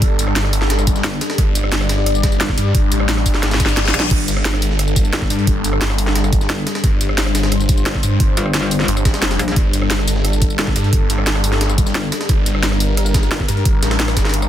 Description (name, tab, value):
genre	dark technical drum and bass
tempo	176 BPM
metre	4/4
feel	straight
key	G minor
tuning	A4 = 444 Hz
part	dark analog pad	sustained chords	0.0-14.5 s	G3 to D5	-23 LUFS	left 3 dB	chorus, sidechain pumping
part	snarling distorted saw bass	bass	0.0-14.5 s	G1 to G2	-18 LUFS	equal	distortion, tube saturation, sidechain pumping
part	breakbeat sampler-style drum kit	drums	0.0-14.4 s	hi-hat, snare drum	-27 LUFS	equal	high-pass filter on hats, high-pass filter on snare, high-pass filter on room
part	drum and bass drum kit	drums	0.0-14.5 s	crash cymbal, hi-hat, rim click, snare drum, tambourine	-21 LUFS	equal	overdrive
part	electronic kick drum	drums	0.0-14.2 s	none	-17 LUFS	equal	overdrive
part	metallic wobble bass	bass	1.0-13.5 s	G1 to Bb1	-21 LUFS	equal	distortion, chorus
part	reverse cymbal	sound effects	3.6-4.1 s	none	-24 LUFS	left 5 dB	none
room	digital ambience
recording	dense, heavily limited modern master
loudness	-14 LUFS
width	side -11 dB against mid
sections	0.0-14.5 A section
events	drum fill 3.4-4.1; reverse cymbal 3.6-4.1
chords	0.0 G5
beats	| 0.02 0.36 0.70 1.04 | 1.38 1.72 2.06 2.40 | 2.75 3.09 3.43 3.77 | 4.11 4.45 4.79 5.13 | 5.47 5.81 6.16 6.50 | 6.84 7.18 7.52 7.86 | 8.20 8.54 8.88 9.22 | 9.56 9.90 10.25 10.59 | 10.93 11.27 11.61 11.95 | 12.29 12.63 12.97 13.31 | 13.65 14.00 14.34